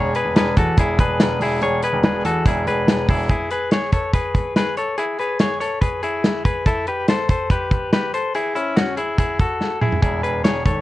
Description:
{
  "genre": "jangly indie pop",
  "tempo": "143 BPM",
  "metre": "4/4",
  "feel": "straight",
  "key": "E major",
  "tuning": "A4 = 440 Hz",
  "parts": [
    { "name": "direct-recorded clean electric guitar", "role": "arpeggios", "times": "0.0-10.8 s", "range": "C#4 to C#5", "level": "-21 LUFS", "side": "left 2 dB", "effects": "tape echo" },
    { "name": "warm baby grand piano", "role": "bass", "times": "0.0-3.3, 10.0-10.8 s", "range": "E1 to E2", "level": "-23 LUFS", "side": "right 2 dB", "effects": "none" },
    { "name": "modern studio drum kit", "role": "drums", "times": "0.1-10.8 s", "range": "hi-hat, kick drum, snare drum, toms", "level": "-19 LUFS", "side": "equal", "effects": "none" }
  ],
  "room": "light reverb",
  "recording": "cassette tape",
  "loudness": "-17 LUFS",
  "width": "side -16 dB against mid",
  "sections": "0.0-3.3 A section; 3.3-10.8 B section",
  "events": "drum fill 9.6-10.0",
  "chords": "0.0 E; 3.3 E6; 6.7 C5; 8.3 Amaj7; 10.0 E6"
}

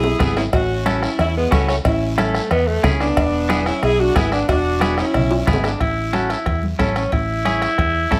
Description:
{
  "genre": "latin, cumbia",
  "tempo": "182 BPM",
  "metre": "4/4",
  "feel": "straight",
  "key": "A major",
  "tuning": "A4 = 439 Hz",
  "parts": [
    { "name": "warm saxophone section", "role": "melody", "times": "0.0-5.6 s", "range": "G#3 to G#4", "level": "-22 LUFS", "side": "equal", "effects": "none" },
    { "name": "hollow-body short-scale fingered electric bass", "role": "bass", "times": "0.0-8.2 s", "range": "E1 to E2", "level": "-25 LUFS", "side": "equal", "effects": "none" },
    { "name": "timbales and cowbell", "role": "percussion", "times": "0.0-8.2 s", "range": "none", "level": "-29 LUFS", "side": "equal", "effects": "none" },
    { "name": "clean electric guitar", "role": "accompaniment", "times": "0.2-8.2 s", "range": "B3 to A4", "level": "-26 LUFS", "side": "equal", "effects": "none" },
    { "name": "bombo", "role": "percussion", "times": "0.2-8.2 s", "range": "none", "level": "-25 LUFS", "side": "equal", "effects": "none" },
    { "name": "congas", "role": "percussion", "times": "0.2-8.2 s", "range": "none", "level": "-29 LUFS", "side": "equal", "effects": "none" },
    { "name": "guiro", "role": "percussion", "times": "0.2-8.2 s", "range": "none", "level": "-38 LUFS", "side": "equal", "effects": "none" },
    { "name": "raspy tenor saxophone", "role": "second line", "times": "2.2-2.9, 5.6-8.2 s", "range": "A3 to F#4", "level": "-24 LUFS", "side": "equal", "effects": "none" }
  ],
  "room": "moderate large studio reverb, RT60 1.0 s",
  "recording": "none",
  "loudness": "-18 LUFS",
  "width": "mono",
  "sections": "0.0-5.8 A section; 5.8-8.2 B section",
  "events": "drum fill 0.0-0.5, 5.3-5.8; tenor saxophone solo 5.8-8.2",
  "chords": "0.0 E; 0.5 A; 3.2 E7; 5.8 A"
}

